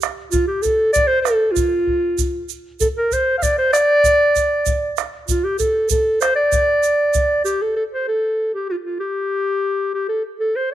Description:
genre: andean folk, Andean ensemble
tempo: 97 BPM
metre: 2/4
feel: straight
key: D minor pentatonic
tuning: A4 = 440 Hz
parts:
  - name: bombo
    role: percussion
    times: 0.0-7.3 s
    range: none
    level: -23 LUFS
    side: equal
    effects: none
  - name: tube shaker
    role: percussion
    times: 0.0-7.6 s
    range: none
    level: -26 LUFS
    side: right 18 dB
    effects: none
  - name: dark clarinet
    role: melody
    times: 0.3-10.7 s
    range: F4 to F5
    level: -16 LUFS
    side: equal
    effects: none
room: moderate echo chamber reverb, RT60 1.8 s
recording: 1960s-style stereo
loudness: -16 LUFS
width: side -12 dB against mid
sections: 0.0-7.8 A section; 7.8-10.7 B section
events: none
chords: none

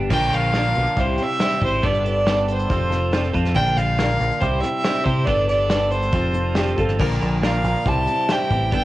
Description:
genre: folk rock and heartland rock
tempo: 139 BPM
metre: 4/4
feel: straight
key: C major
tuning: A4 = 441 Hz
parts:
  - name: picked steel-string acoustic guitar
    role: accompaniment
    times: 0.0-8.8 s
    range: Bb2 to Bb4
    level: -27 LUFS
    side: left 4 dB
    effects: cassette tape
  - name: twelve-string electric guitar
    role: riff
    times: 0.0-8.8 s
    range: Bb2 to Bb4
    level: -26 LUFS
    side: right 5 dB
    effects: phaser, cassette tape
  - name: deep dub picked electric bass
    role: bass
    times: 0.0-8.8 s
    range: F1 to C3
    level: -23 LUFS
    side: equal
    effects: none
  - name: warm fiddle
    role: melody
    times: 0.1-8.8 s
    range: C5 to A5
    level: -22 LUFS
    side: right 1 dB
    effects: cassette tape, tape echo
  - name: soft brush drum kit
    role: drums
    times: 0.1-8.8 s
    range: crash cymbal, hi-hat, kick drum, snare drum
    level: -25 LUFS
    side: equal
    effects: cassette tape
  - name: warm upright piano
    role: second line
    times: 6.6-7.3 s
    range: G4 to Bb4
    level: -26 LUFS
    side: equal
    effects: cassette tape
room: little or no reverb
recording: home recording on cassette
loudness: -18 LUFS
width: side -16 dB against mid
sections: 0.1-8.8 A section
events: none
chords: 0.1 Bb; 1.0 C; 1.8 Gadd9; 2.7 F; 3.6 Bb; 4.4 C; 5.3 Gadd9; 6.1 F; 7.0 Bb; 7.9 C

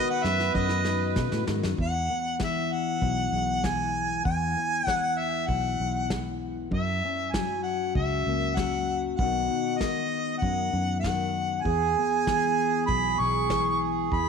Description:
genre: folk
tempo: 97 BPM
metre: 4/4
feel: straight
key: E major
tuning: A4 = 440 Hz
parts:
  - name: warm harmonica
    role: melody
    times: 0.0-14.3 s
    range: D#5 to C#6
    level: -28 LUFS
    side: equal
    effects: tape echo
  - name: accordion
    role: second line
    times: 0.0-1.4, 11.7-14.3 s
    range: G#4 to B4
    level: -29 LUFS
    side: right 10 dB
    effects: none
  - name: fingerpicked steel-string acoustic guitar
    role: accompaniment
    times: 0.0-14.3 s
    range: E2 to F#4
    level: -31 LUFS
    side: left 8 dB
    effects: none
  - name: fingered electric bass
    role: bass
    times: 0.2-14.3 s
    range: B1 to B2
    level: -30 LUFS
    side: right 1 dB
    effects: none
  - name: soft brush drum kit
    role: drums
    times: 0.2-14.3 s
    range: kick drum, snare drum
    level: -32 LUFS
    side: equal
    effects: none
room: moderate echo chamber reverb, RT60 1.9 s, studio ambience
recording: 1960s-style stereo with parts hard left and right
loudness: -24 LUFS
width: side -6 dB against mid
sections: 0.0-1.8 A section; 1.8-14.3 B section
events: drum fill 0.0-1.8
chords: 0.0 B; 1.8 Eadd9; 6.7 F#7; 9.2 B; 11.7 E

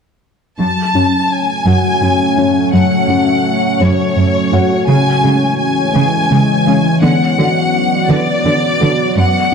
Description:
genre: cinematic, hybrid orchestral and electronic film score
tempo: 56 BPM (dotted quarters)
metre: 6/8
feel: straight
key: F# minor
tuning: A4 = 440 Hz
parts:
  - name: rich symphonic violin section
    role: melody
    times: 0.6-9.5 s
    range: C#5 to A5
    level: -16 LUFS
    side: left 2 dB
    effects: none
  - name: deep dark ambient pad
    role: sustained chords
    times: 1.2-9.5 s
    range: E3 to D5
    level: -16 LUFS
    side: equal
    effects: chorus, built-in reverb
  - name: harp-like synth pluck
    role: arpeggios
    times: 0.6-9.5 s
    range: C#3 to F#4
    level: -17 LUFS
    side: left 4 dB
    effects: chorus, ping-pong delay
  - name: rich symphonic cello section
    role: bass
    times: 0.6-9.2 s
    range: F#2 to D3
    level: -16 LUFS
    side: right 3 dB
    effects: none
  - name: felt-muted upright piano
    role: texture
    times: 1.7-7.0 s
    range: F#4 to F#5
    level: -24 LUFS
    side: left 2 dB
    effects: ping-pong delay
room: moderate scoring stage reverb, RT60 1.5 s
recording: dark, warm production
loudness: -11 LUFS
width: side -6 dB against mid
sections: 0.6-9.5 A section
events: none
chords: 0.6 F#m; 4.9 C#m; 7.0 Bm

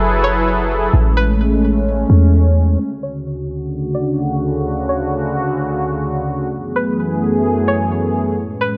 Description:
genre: hip hop, atmospheric cloud-rap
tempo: 129 BPM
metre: 4/4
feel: half-time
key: D lydian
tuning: A4 = 440 Hz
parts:
  - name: string-like resonator pluck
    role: melody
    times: 0.0-8.8 s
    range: B4 to D5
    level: -26 LUFS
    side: equal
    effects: chorus, low-pass filter, delay
  - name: sweeping resonant pad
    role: sustained chords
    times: 0.0-8.8 s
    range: D2 to B4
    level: -20 LUFS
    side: equal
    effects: chorus, low-pass filter
  - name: clean 808-style bass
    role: bass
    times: 0.0-2.8 s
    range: F#1 to E2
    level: -16 LUFS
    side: equal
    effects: none
room: light reverb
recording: none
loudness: -17 LUFS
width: mono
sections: 0.0-2.8 A section; 2.8-8.8 B section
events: filter sweep 2.8-8.8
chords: 0.0 F#m11; 0.9 Amaj9; 2.8 Dmaj7; 6.5 F#m11

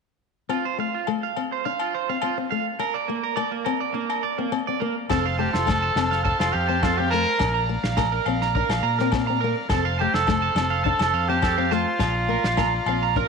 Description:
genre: highlife guitar band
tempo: 104 BPM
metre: 4/4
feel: straight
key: F major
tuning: A4 = 439 Hz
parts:
  - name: fingerpicked plugged-in steel-string acoustic guitar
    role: accompaniment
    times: 0.5-13.3 s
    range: A3 to D4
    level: -29 LUFS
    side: left 13 dB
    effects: none
  - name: electric guitar at the edge of break-up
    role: arpeggios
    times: 0.5-13.3 s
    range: Bb3 to Bb5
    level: -26 LUFS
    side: right 10 dB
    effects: slapback echo
  - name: agogo bells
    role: percussion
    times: 0.5-13.0 s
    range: none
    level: -32 LUFS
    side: left 11 dB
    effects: none
  - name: combo organ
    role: sustained chords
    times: 5.1-13.3 s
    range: C5 to Bb5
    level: -33 LUFS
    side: equal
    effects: none
  - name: fingered electric bass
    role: bass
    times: 5.1-13.2 s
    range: F1 to Bb2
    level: -27 LUFS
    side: equal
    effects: none
  - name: warm soul drum kit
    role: drums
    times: 5.1-13.3 s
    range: kick drum, snare drum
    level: -29 LUFS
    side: equal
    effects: none
  - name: clear trumpet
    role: melody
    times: 5.4-13.3 s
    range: F4 to Bb4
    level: -24 LUFS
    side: right 1 dB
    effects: slapback echo
room: moderate echo chamber reverb, RT60 2.3 s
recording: 1960s-style stereo with parts hard left and right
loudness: -21 LUFS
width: side -5 dB against mid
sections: 0.5-5.1 A section; 5.1-13.3 B section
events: none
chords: 0.5 F; 2.8 Bb; 5.1 F; 7.4 Bb; 9.7 F; 12.0 Bb

